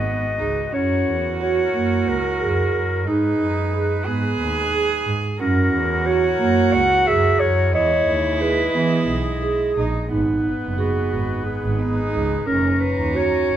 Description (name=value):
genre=contemporary instrumental, contemporary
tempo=179 BPM (eighths)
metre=7/8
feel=straight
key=G# minor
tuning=A4 = 440 Hz
part: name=warm clarinet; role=melody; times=0.0-13.6 s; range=F#4 to F#5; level=-23 LUFS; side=left 3 dB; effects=none
part: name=rich cello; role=second line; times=0.0-13.6 s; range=B3 to G#4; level=-25 LUFS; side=right 4 dB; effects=none
part: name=clear woodwind section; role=sustained chords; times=0.0-13.6 s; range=F#3 to A#5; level=-31 LUFS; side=left 2 dB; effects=none
part: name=rich double bass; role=bass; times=0.0-13.6 s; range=F#1 to E3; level=-24 LUFS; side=right 2 dB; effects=none
part: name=vibraphone with soft mallets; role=arpeggios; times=0.1-13.5 s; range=A#3 to D#5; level=-23 LUFS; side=right 4 dB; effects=none
room=light reverb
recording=close, detailed microphones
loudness=-18 LUFS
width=side -10 dB against mid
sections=0.7-10.1 A section; 10.1-13.6 B section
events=none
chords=0.0 G#m7; 0.7 F#7; 3.1 G#m; 5.4 F#7; 7.7 Emaj7; 10.1 G#m; 12.5 F#6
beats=0.05 0.39 | 0.73 1.07 1.40 1.74 2.07 2.41 2.74 | 3.07 3.41 3.74 4.07 4.41 4.74 5.07 | 5.40 5.73 6.06 6.39 6.73 7.06 7.40 | 7.73 8.06 8.40 8.74 9.08 9.42 9.76 | 10.10 10.44 10.78 11.12 11.46 11.79 12.13 | 12.47 12.80 13.14 13.47